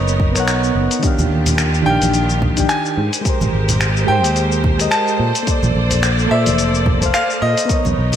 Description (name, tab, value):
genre	sunset chillout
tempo	108 BPM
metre	4/4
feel	swing 57% on 16ths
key	unclear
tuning	A4 = 440 Hz
part	soft electric-piano-like synth keys	accompaniment	0.0-8.2 s	Eb3 to G5	-20 LUFS	moving between left 3 dB and right 4 dB	chorus, auto-pan, digital delay
part	clear symphonic string section	sustained chords	0.0-8.2 s	Eb3 to D5	-23 LUFS	equal	none
part	fingered electric bass	bass	0.0-8.2 s	F1 to Bb2	-18 LUFS	equal	none
part	dusty soul sampler-style drum kit	drums	0.1-8.2 s	cabasa, finger snaps, hi-hat	-22 LUFS	left 2 dB	gated reverb
part	electronic kick drum	drums	0.2-7.8 s	none	-19 LUFS	equal	overdrive
part	congas	percussion	1.2-8.2 s	none	-24 LUFS	right 2 dB	none
part	bright grand piano	melody	1.9-8.2 s	Eb5 to A5	-21 LUFS	equal	digital delay
room	moderate lush hall reverb, RT60 1.7 s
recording	bright 1980s-style digital production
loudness	-14 LUFS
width	side -9 dB against mid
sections	0.0-8.2 A section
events	none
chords	0.0 Bmaj9; 1.0 Ebmaj9; 3.0 Abmaj9; 5.2 Bbmaj9